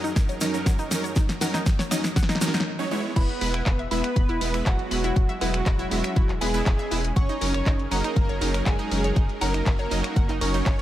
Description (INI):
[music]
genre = progressive house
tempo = 120 BPM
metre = 4/4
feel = straight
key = F# mixolydian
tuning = A4 = 440 Hz
[part]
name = supersaw pad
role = sustained chords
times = 0.0-10.8 s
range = F#2 to A#4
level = -35 LUFS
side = equal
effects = sidechain pumping
[part]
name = analog pluck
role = arpeggios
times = 0.0-10.8 s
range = D#4 to B5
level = -34 LUFS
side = equal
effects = chorus, sidechain pumping, tape echo
[part]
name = house drum kit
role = drums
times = 0.0-10.8 s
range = crash cymbal, finger snaps, handclaps, hi-hat, snare drum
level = -29 LUFS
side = left 1 dB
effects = none
[part]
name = egg shaker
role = percussion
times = 0.0-2.6 s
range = none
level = -36 LUFS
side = right 2 dB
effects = none
[part]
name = electronic kick drum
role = drums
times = 0.2-10.8 s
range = none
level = -22 LUFS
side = equal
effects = none
[part]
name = supersaw stab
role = stabs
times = 0.4-10.8 s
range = F#3 to E5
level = -30 LUFS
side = right 2 dB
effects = sidechain pumping, tape echo
[part]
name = soft supersaw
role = melody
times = 3.2-10.8 s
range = F#3 to C#5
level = -30 LUFS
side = right 1 dB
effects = tape echo
[part]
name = soft synth bell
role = second line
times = 3.2-10.8 s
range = F#5 to C#6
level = -36 LUFS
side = equal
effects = chorus, sidechain pumping, tape echo
[part]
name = round analog bass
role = bass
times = 3.2-10.8 s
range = E1 to F#1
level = -29 LUFS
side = equal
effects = sidechain pumping
[sound]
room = light reverb, digital ambience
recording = none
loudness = -21 LUFS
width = side -13 dB against mid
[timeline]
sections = 0.0-3.2 A section; 3.2-10.8 B section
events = build-up 0.0-3.2; drum fill 0.0-2.7; filter sweep on synth arpeggio sound 0.0-3.2; break 2.7-3.2; drop 3.2-10.8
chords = 0.0 F#6; 3.2 E; 7.2 F#6